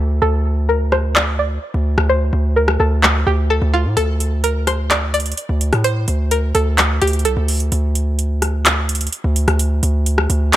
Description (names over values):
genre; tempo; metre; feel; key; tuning
hip hop, trap; 128 BPM; 4/4; half-time; unclear; A4 = 439 Hz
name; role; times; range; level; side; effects
string-like resonator pluck; melody; 0.0-7.7 s; F4 to D5; -20 LUFS; equal; chorus, low-pass filter
distorted 808-style bass; bass; 0.0-10.5 s; C2 to A2; -17 LUFS; equal; distortion
trap drum kit; drums; 0.9-10.6 s; handclaps, hi-hat, rim click; -17 LUFS; equal; overdrive
room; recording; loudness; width
little or no reverb; none; -15 LUFS; side -14 dB against mid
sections
0.0-10.6 A section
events
break 0.0-4.0; filter sweep on synth pluck 0.0-4.0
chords
0.0 D5; 7.7 N.C.